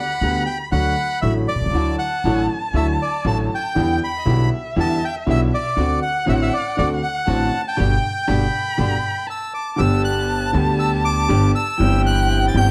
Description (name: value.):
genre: tango.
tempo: 119 BPM.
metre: 4/4.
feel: rubato.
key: G major.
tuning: A4 = 440 Hz.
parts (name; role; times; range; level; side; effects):
bandoneon; melody; 0.0-12.7 s; D5 to A6; -26 LUFS; equal; none.
warm violin; second line; 0.0-12.7 s; Eb5 to B5; -29 LUFS; equal; none.
clear concert grand piano; accompaniment; 0.2-12.7 s; G1 to G4; -24 LUFS; equal; none.
upright bass; bass; 0.2-12.7 s; G1 to E2; -24 LUFS; equal; none.
warm chamber string section; stabs; 1.7-12.7 s; B3 to G4; -34 LUFS; equal; none.
room: moderate large studio reverb, RT60 0.9 s.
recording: dark, warm production.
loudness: -20 LUFS.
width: mono.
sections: 0.0-9.8 A section; 9.8-12.7 A section.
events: band accent 7.8-9.8.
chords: 0.0 G/D; 0.7 D; 1.7 Dadd9; 3.8 Em7; 5.8 D7; 7.8 G; 11.8 C/G.